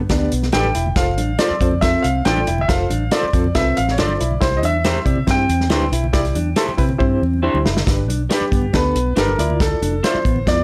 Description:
uptempo 1960s-style soul; 139 BPM; 4/4; straight; G mixolydian; A4 = 444 Hz
vintage muted fingered electric bass; bass; 0.0-10.6 s; E1 to C3; -24 LUFS; equal
barky reed electric piano; accompaniment; 0.1-10.6 s; D4 to D5; -27 LUFS; equal; overdrive, fast tremolo
mellow electric guitar; riff; 0.1-10.6 s; B3 to E4; -26 LUFS; equal
warm soul drum kit; drums; 0.1-10.6 s; hi-hat, kick drum, snare drum; -23 LUFS; equal
congas; percussion; 0.4-10.6 s; -35 LUFS; equal
clear baby grand piano; melody; 0.5-10.6 s; G4 to G5; -24 LUFS; equal
electric guitar through a small old amp; stabs; 0.5-10.2 s; C4 to E5; -28 LUFS; equal
light reverb, studio reverb; -18 LUFS; mono
0.0-7.9 A section; 7.9-10.6 B section
drum fill 7.0-7.9; grand piano solo 7.9-10.6
0.0 G; 1.0 F; 4.4 C; 7.9 G; 9.4 Dmadd9
0.10 0.53 | 0.96 1.39 1.82 2.25 | 2.69 3.12 3.55 3.98 | 4.42 4.85 5.28 5.71 | 6.14 6.58 7.01 7.44 | 7.87 8.31 8.74 9.17 | 9.60 10.04 10.47

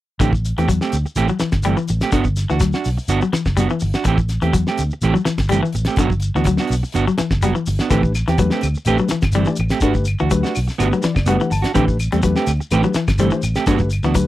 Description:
afrobeat; 125 BPM; 4/4; straight; A dorian; A4 = 441 Hz
electric guitar at the edge of break-up; arpeggios; 0.2-14.3 s; D3 to G3; -21 LUFS; left 4 dB
electric guitar at the edge of break-up; stabs; 0.2-14.2 s; E3 to G4; -21 LUFS; right 6 dB
fingered electric bass; bass; 0.2-14.2 s; F#1 to E2; -20 LUFS; equal
damped 70s drum kit; drums; 0.2-14.3 s; hi-hat, kick drum, snare drum; -22 LUFS; equal
shekere; percussion; 0.2-14.3 s; -28 LUFS; left 1 dB
reed electric piano; accompaniment; 7.9-14.3 s; A3 to A5; -23 LUFS; left 3 dB
claves; percussion; 8.2-14.1 s; -31 LUFS; left 5 dB
light reverb; dry, close 1970s-style studio recording; -16 LUFS; side -15 dB against mid
0.2-14.3 A section
reed electric piano fill 10.8-11.8
0.2 Am7; 2.1 Gmaj7; 4.1 Am7; 6.0 Gmaj7; 7.9 Am7; 9.8 Gmaj7; 11.8 Am7; 13.7 Gmaj7
| 0.20 0.69 1.17 1.65 | 2.13 2.62 3.10 3.58 | 4.06 4.54 5.03 5.51 | 5.99 6.47 6.95 7.43 | 7.92 8.40 8.88 9.36 | 9.84 10.32 10.80 11.28 | 11.76 12.24 12.72 13.20 | 13.68 14.16

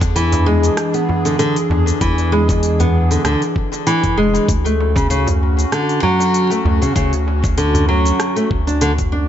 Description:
organic downtempo; 97 BPM; 4/4; swing 55% on 16ths; E mixolydian; A4 = 440 Hz
airy breathy pad; sustained chords; 0.0-9.3 s; E3 to G#4; -22 LUFS; right 1 dB; chorus, sidechain pumping
round analog bass; bass; 0.0-9.3 s; E1 to E2; -17 LUFS; equal; sidechain pumping
electronic kick drum; drums; 0.0-9.1 s; -20 LUFS; equal; overdrive
organic electronic drum kit; drums; 0.0-9.1 s; hi-hat, rim click, shaker; -26 LUFS; equal
darbuka; percussion; 0.0-9.1 s; -25 LUFS; right 1 dB
nylon-string guitar; arpeggios; 0.2-9.3 s; C#3 to D4; -17 LUFS; left 1 dB; ping-pong delay
light reverb; nothing above 7.8 kHz; -14 LUFS; side -10 dB against mid
0.0-9.3 A section
0.0 E7; 4.5 Dmaj7
0.16 0.78 1.39 | 2.01 2.63 3.25 3.87 | 4.49 5.11 5.72 6.34 | 6.96 7.58 8.20 8.82

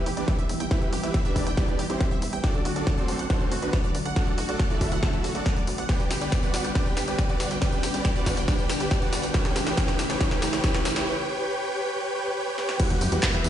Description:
uplifting trance; 139 BPM; 4/4; straight; E minor; A4 = 440 Hz
supersaw chords; melody; 0.0-13.5 s; B3 to G5; -30 LUFS; right 1 dB; sidechain pumping, tape echo
tight sequencer bass; bass; 0.0-13.5 s; G1 to F#2; -34 LUFS; equal; sidechain pumping, high-pass filter
riser and downlifter; sound effects; 2.3-13.5 s; -36 LUFS; equal
analog string pad; sustained chords; 0.1-13.5 s; C#3 to G4; -33 LUFS; equal; ensemble chorus, sidechain pumping
wide unison pluck; arpeggios; 0.1-13.4 s; C#4 to G5; -35 LUFS; right 3 dB; phaser, sidechain pumping, ping-pong delay
punchy analog drum machine; drums; 0.1-13.5 s; crash cymbal, handclaps, hi-hat, snare drum, tambourine; -32 LUFS; left 1 dB; high-pass filter on snare, high-pass filter on hats, high-pass filter on perc, high-pass filter on cymbals
electronic kick drum; drums; 0.3-13.3 s; -25 LUFS; equal; overdrive
light reverb, digital ambience; played on a big sound system in a bare room, stone room reverb, nothing above 10.6 kHz; -23 LUFS; side -11 dB against mid
0.0-12.8 A section
build-up 0.0-12.8; drum fill 0.0-11.1, 12.6; riser 2.3-11.1; break 11.1-12.8
0.0 Em; 2.4 D; 5.9 G; 9.3 A; 12.8 Em
0.28 | 0.71 1.14 1.57 2.00 | 2.44 2.87 3.30 3.73 | 4.16 4.59 5.03 5.46 | 5.89 6.32 6.75 7.18 | 7.62 8.05 8.48 8.91 | 9.34 9.78 10.21 10.64 | 11.07 11.50 11.93 12.37 | 12.80 13.23

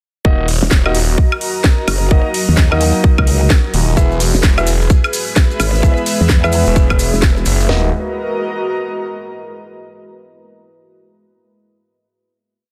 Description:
bass house; 129 BPM; 4/4; swing 62% on 16ths; Eb phrygian; A4 = 445 Hz
deep dark ambient pad; sustained chords; 1.5-7.9 s; Gb3 to B4; -30 LUFS; equal; chorus, built-in reverb, sidechain pumping
dark concert grand piano; stabs; 0.2-7.9 s; Bb3 to E5; -24 LUFS; equal; sidechain pumping, digital delay
phased detuned saw bass; bass; 0.2-7.9 s; Eb1 to Gb1; -18 LUFS; equal; phaser, sidechain pumping
garage drum kit; drums; 0.2-7.8 s; kick drum, snare drum, toms; -14 LUFS; equal
airy breathy pad; texture; 0.2-9.5 s; Gb4 to B5; -26 LUFS; equal; chorus, sidechain pumping
house drum kit; drums; 0.5-7.6 s; hi-hat, snare drum, woodblock; -22 LUFS; equal
growl bass; bass; 0.6-7.4 s; Eb1 to E2; -17 LUFS; equal; chorus, tube saturation, sidechain pumping
maracas; percussion; 4.0-7.7 s; -30 LUFS; equal
digital ambience; dense, heavily limited modern master; -14 LUFS; mono
0.2-7.7 drop; 7.7-9.6 final chord
drop 0.2-7.7
0.2 Ebm; 4.0 E; 7.7 Ebm
| 0.25 0.71 1.18 1.65 | 2.11 2.58 3.04 3.50 | 3.97 4.43 4.90 5.37 | 5.83 6.30 6.76 7.23 | 7.69 8.16 8.62 9.09

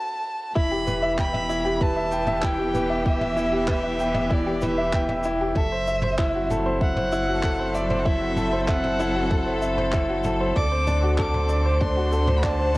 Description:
piano and strings electronica; 96 BPM; 4/4; straight; E minor; A4 = 441 Hz
dark violin; melody; 0.0-12.8 s; D5 to D6; -30 LUFS; equal; cassette tape
bright upright piano; riff; 0.0-12.8 s; D4 to G5; -24 LUFS; equal; cassette tape
rich symphonic string section; sustained chords; 0.6-12.8 s; D3 to F#5; -30 LUFS; equal; sidechain pumping, cassette tape
warm sub bass; bass; 0.6-12.8 s; E1 to D2; -28 LUFS; equal; sidechain pumping
electronic kick drum; drums; 0.6-12.6 s; -25 LUFS; equal; cassette tape
vintage brush drum kit; drums; 0.9-12.8 s; handclaps, shaker, toms; -32 LUFS; equal; cassette tape
light reverb, small room ambience; home recording on cassette, high-pass filter; -21 LUFS; side -20 dB against mid
0.6-12.8 A section
break 0.0-0.6; drop 0.6-12.8
0.0 F#m7b5; 0.6 Em; 5.6 F#m7b5; 10.6 D7
| 0.56 1.18 1.81 2.43 | 3.06 3.68 4.31 4.93 | 5.56 6.18 6.81 7.43 | 8.06 8.68 9.31 9.93 | 10.56 11.18 11.81 12.43

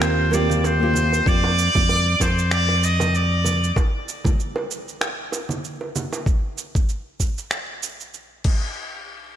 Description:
sunset chillout; 96 BPM; 4/4; swing 57% on 16ths; A4 = 441 Hz
trumpet with straight mute; melody; 0.0-3.8 s; C5 to Eb5; -22 LUFS; equal; ping-pong delay, slapback echo
nylon-string guitar; accompaniment; 0.0-1.2 s; Bb3 to G4; -24 LUFS; right 1 dB; auto-pan, digital delay, slapback echo
fingered electric bass; bass; 0.0-3.7 s; Eb2 to F2; -21 LUFS; equal
dusty soul sampler-style drum kit; drums; 0.0-8.6 s; cabasa, crash cymbal, finger snaps; -28 LUFS; right 2 dB; overdrive
bongos and congas; percussion; 0.3-6.2 s; -30 LUFS; right 3 dB
electronic kick drum; drums; 1.3-8.6 s; -20 LUFS; equal; overdrive
moderate concert hall reverb, RT60 2.2 s; big arena sound, faint mains hum; -19 LUFS; side -10 dB against mid
0.0-8.8 A section
0.0 Eb6; 1.3 Dm/F; 3.8 N.C.
0.01 0.64 | 1.26 1.89 2.51 3.14 | 3.76 4.39 5.01 5.64 | 6.26 6.89 7.51 8.14

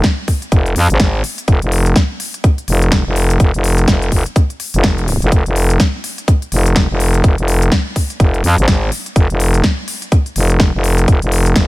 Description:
bass house; 125 BPM; 4/4; swing 59% on 16ths; F minor; A4 = 439 Hz
growling FM bass; bass; 0.0-11.7 s; F1 to F2; -13 LUFS; equal; tube saturation, sidechain pumping
big-room dance drum kit; drums; 0.0-11.7 s; hi-hat, snare drum; -20 LUFS; left 1 dB; overdrive, small room ambience
electronic kick drum; drums; 0.0-11.7 s; -12 LUFS; equal; small room ambience
digital ambience; -12 LUFS; side -20 dB against mid
0.0-11.7 A section
0.04 0.52 1.00 | 1.48 1.96 2.44 2.92 | 3.40 3.88 4.36 4.84 | 5.32 5.80 6.28 6.76 | 7.24 7.72 8.20 8.68 | 9.16 9.64 10.12 10.60 | 11.08 11.56

